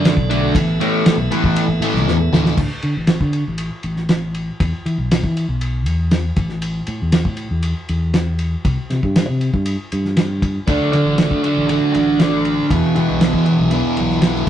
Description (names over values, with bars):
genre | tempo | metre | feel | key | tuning
psychedelic rock | 118 BPM | 4/4 | straight | unclear | A4 = 439 Hz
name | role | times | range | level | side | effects
tonewheel organ | sustained chords | 0.0-2.6, 10.7-14.5 s | E3 to E5 | -26 LUFS | right 4 dB | stopped rotary speaker
fuzz guitar | riff | 0.0-2.6, 10.7-14.5 s | E2 to D4 | -16 LUFS | equal | distortion, phaser
fingered electric bass | bass | 0.0-14.4 s | A1 to E3 | -20 LUFS | equal | none
cloth-damped thuddy drum kit | drums | 0.1-14.5 s | crash cymbal, kick drum, ride cymbal, snare drum | -19 LUFS | equal | none
room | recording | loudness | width
moderate studio reverb, RT60 0.6 s | rough rehearsal-room recording, nothing above 11.0 kHz | -15 LUFS | side -10 dB against mid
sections
0.0-2.6 A section; 2.6-14.5 B section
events
drum fill 2.1-2.6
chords
0.0 D; 0.5 Asus2; 2.6 D5; 4.6 E5; 6.4 A5; 8.6 C5; 10.7 D; 12.7 E